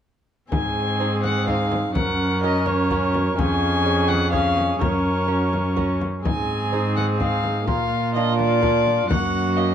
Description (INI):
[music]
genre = classical, renaissance-style consort dance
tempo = 126 BPM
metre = 3/4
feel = straight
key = Ab mixolydian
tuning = A4 = 440 Hz
[part]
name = dark violin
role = melody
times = 0.5-9.7 s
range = Db5 to Ab5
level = -25 LUFS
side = left 4 dB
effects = none
[part]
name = mellow cor anglais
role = second line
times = 0.5-9.7 s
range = F4 to Bb4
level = -27 LUFS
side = right 3 dB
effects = none
[part]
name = lute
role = accompaniment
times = 0.5-9.7 s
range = F2 to Db5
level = -29 LUFS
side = right 5 dB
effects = none
[part]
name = rich viola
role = accompaniment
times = 0.5-9.7 s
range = Bb3 to Db4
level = -27 LUFS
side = left 2 dB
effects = none
[part]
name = rich cello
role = bass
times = 0.5-9.7 s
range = F2 to Bb2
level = -24 LUFS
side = right 1 dB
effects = none
[part]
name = frame drum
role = percussion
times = 0.5-9.3 s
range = none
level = -28 LUFS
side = left 2 dB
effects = none
[sound]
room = moderate stone room reverb, RT60 1.2 s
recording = dark, warm production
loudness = -19 LUFS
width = side -9 dB against mid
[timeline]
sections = 0.5-9.7 A section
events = none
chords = 0.5 Ab; 2.0 Gb; 3.4 Db/F; 4.8 Gb; 6.2 Ab; 7.7 Bb; 9.1 Gb